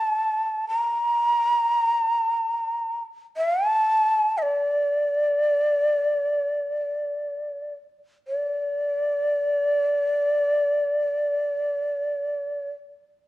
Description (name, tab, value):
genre	japanese traditional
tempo	free time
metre	none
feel	none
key	unclear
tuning	A4 = 435 Hz
part	breathy hollow shakuhachi	solo	0.0-12.7 s	D5 to Bb5	-21 LUFS	equal	none
room	light reverb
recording	worn, warbling old tape, cassette tape, warbly pitch drift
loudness	-21 LUFS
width	side -16 dB against mid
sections	0.0-8.3 A section; 8.3-13.3 B section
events	slowing down 3.5-8.3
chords	none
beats	free time